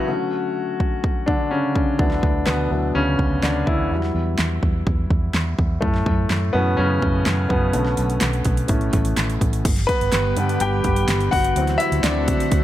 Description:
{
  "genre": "piano-driven pop",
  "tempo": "125 BPM",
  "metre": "4/4",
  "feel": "straight",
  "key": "D major",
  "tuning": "A4 = 440 Hz",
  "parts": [
    { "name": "clear concert grand piano", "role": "accompaniment", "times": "0.0-12.6 s", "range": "A2 to G5", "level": "-22 LUFS", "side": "left 2 dB", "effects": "none" },
    { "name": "pop drum kit", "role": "drums", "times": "0.8-12.6 s", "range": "crash cymbal, handclaps, hi-hat, kick drum, snare drum", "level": "-22 LUFS", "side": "right 1 dB", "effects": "overdrive" },
    { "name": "vintage muted fingered electric bass", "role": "bass", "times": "2.0-12.6 s", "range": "G1 to D3", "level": "-22 LUFS", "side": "right 1 dB", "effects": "none" },
    { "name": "airy breathy pad", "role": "sustained chords", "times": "9.6-12.6 s", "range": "D3 to G4", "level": "-27 LUFS", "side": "right 1 dB", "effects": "chorus" }
  ],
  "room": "digital ambience",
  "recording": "none",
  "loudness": "-18 LUFS",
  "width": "side -13 dB against mid",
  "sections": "0.0-9.7 A section; 9.7-12.6 B section",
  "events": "grand piano solo 0.0-9.7, 9.7-12.6",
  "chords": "0.1 Dmaj7; 2.0 D6; 3.9 Emadd9; 5.8 F#m7; 7.7 Bm7; 8.7 A; 9.7 G; 11.6 D7"
}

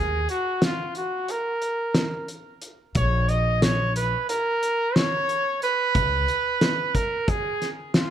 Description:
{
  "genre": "progressive instrumental, band music in an uneven meter",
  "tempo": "180 BPM (eighths)",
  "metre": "9/8",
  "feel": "straight",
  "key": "unclear",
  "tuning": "A4 = 441 Hz",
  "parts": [
    { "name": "clear trumpet", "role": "melody", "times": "0.0-8.1 s", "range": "E#4 to D#5", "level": "-24 LUFS", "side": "right 2 dB", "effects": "digital delay" },
    { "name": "upright bass", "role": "bass", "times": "0.0-6.2 s", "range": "A#1 to D#2", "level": "-24 LUFS", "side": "left 1 dB", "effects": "none" },
    { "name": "loose indie drum kit", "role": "drums", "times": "0.3-8.1 s", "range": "hi-hat, kick drum, snare drum", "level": "-24 LUFS", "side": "equal", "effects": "none" }
  ],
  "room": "moderate small room reverb, RT60 0.5 s",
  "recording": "none",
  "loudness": "-21 LUFS",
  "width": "side -10 dB against mid",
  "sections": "0.0-8.1 A section",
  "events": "none",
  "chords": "0.0 D#5; 3.0 A#m; 5.9 N.C."
}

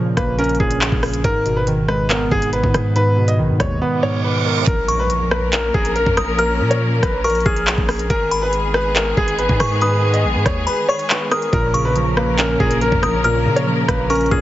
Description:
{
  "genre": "hip hop, drill",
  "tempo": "140 BPM",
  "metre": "4/4",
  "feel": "half-time",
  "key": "Bb phrygian",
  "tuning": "A4 = 440 Hz",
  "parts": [
    { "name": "warbly lo-fi synth keys", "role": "accompaniment", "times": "0.0-4.7, 11.5-14.4 s", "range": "Ab2 to Db4", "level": "-20 LUFS", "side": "right 1 dB", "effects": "chorus" },
    { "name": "long sustained 808-style bass", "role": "bass", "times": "0.0-14.4 s", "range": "Ab1 to Bb2", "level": "-22 LUFS", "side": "equal", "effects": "none" },
    { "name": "bright upright piano", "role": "melody", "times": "0.2-14.4 s", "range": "Ab4 to Eb5", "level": "-21 LUFS", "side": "equal", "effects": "tape echo" },
    { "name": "drill drum kit", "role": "drums", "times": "0.2-14.4 s", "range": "handclaps, hi-hat, kick drum, rim click", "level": "-20 LUFS", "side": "equal", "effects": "vintage 12-bit sampler grit" },
    { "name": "reverse cymbal and impact", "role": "sound effects", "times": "4.0-6.4 s", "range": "none", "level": "-25 LUFS", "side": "right 6 dB", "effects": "none" },
    { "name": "warm symphonic string section", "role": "sustained chords", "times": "4.7-14.4 s", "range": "Eb3 to Bb4", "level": "-23 LUFS", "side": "left 1 dB", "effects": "none" },
    { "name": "delicate synth tine bell", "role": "second line", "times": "4.9-14.4 s", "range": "Cb6 to F6", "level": "-24 LUFS", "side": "left 2 dB", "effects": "chorus, tape echo" }
  ],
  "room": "little or no reverb",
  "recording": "heavily compressed radio sound, nothing above 7.7 kHz",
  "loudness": "-15 LUFS",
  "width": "side -14 dB against mid",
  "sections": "0.0-4.7 A section; 4.7-14.4 B section",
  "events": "reverse cymbal 4.0-4.7; impact 4.7-6.4; kick muted 10.7-11.5",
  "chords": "0.0 Bbm; 1.2 Abm; 4.7 Bbm; 8.1 Abm; 11.5 Bbm"
}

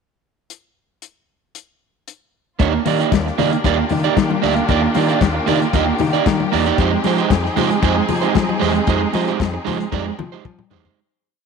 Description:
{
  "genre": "disco",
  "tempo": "115 BPM",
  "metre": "4/4",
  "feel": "straight",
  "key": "Eb major",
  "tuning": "A4 = 440 Hz",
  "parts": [
    { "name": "warm soul drum kit", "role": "drums", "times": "0.5-11.0 s", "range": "hi-hat, kick drum, snare drum, toms", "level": "-22 LUFS", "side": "left 5 dB", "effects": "none" },
    { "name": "electric guitar at the edge of break-up", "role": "accompaniment", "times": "2.6-11.0 s", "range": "Ab3 to Eb5", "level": "-19 LUFS", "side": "right 12 dB", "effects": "none" },
    { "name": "warm studio string section", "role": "sustained chords", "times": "2.6-10.9 s", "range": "Eb3 to Ab4", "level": "-23 LUFS", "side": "left 2 dB", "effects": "none" },
    { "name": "modern bright fingered electric bass", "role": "bass", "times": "2.6-10.9 s", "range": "D2 to F3", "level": "-22 LUFS", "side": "left 2 dB", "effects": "none" },
    { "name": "congas", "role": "percussion", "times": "2.9-10.8 s", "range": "none", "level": "-26 LUFS", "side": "left 15 dB", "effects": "none" }
  ],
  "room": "light reverb, studio reverb",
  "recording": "1960s-style stereo with parts hard left and right",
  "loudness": "-15 LUFS",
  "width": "side -5 dB against mid",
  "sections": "0.5-2.6 pickup bar; 2.6-11.0 groove",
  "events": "fade-out 8.9-11.0; drum fill 9.9-11.0",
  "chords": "0.5 N.C.; 2.6 Ebmaj7; 6.8 Fm9"
}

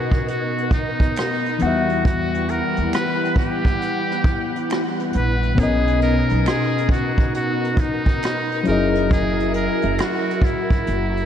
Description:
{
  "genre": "lo-fi hip hop",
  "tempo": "68 BPM",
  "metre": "4/4",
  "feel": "swing 63% on 16ths",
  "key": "B major",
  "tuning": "A4 = 440 Hz",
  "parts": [
    { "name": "trumpet with metal mute", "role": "melody", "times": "0.0-11.3 s", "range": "D#4 to B4", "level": "-24 LUFS", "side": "equal", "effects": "low-pass filter, ping-pong delay" },
    { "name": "reed electric piano", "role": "accompaniment", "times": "0.0-11.3 s", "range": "B2 to F#5", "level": "-24 LUFS", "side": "left 3 dB", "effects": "low-pass filter" },
    { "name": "ensemble organ-string", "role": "sustained chords", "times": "0.0-11.3 s", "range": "E3 to F#5", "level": "-25 LUFS", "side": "equal", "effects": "ensemble chorus, low-pass filter" },
    { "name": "vintage brush drum kit", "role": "drums", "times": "0.1-11.3 s", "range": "hi-hat, kick drum, rim click", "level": "-22 LUFS", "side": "right 1 dB", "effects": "none" },
    { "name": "finger snap", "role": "percussion", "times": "1.2-10.2 s", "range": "none", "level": "-40 LUFS", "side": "right 4 dB", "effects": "none" },
    { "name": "upright bass", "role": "bass", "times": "1.6-11.3 s", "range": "F#1 to E2", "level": "-23 LUFS", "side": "right 1 dB", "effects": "none" }
  ],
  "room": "moderate lush hall reverb, RT60 3.1 s",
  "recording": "dreamy mix soaked in reverb, cassette tape",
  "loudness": "-18 LUFS",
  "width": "side -9 dB against mid",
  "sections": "0.0-11.3 A section",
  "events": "none",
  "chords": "0.0 Bmaj7; 1.6 Emadd9; 5.6 Bmaj7; 8.7 F#13"
}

